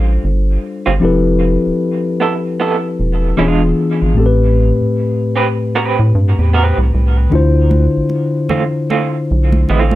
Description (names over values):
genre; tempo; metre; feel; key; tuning
R&B, neo-soul; 76 BPM; 4/4; swing 60% on 16ths; A minor; A4 = 440 Hz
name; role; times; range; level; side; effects
mellow tine electric piano; accompaniment; 0.0-10.0 s; A2 to C5; -15 LUFS; left 2 dB; none
rubbery square bass; bass; 0.0-10.0 s; E1 to A2; -13 LUFS; equal; none
electric guitar through a small old amp; second line; 0.9-9.9 s; G3 to B4; -18 LUFS; right 5 dB; tremolo, tape echo
congas; percussion; 7.3-10.0 s; none; -22 LUFS; right 3 dB; none
room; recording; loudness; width
light reverb; none; -12 LUFS; side -15 dB against mid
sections
0.0-10.0 A section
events
none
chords
0.0 G7sus4; 1.0 Fmaj9#11; 3.4 E7b9; 4.2 Am9; 7.3 Dm7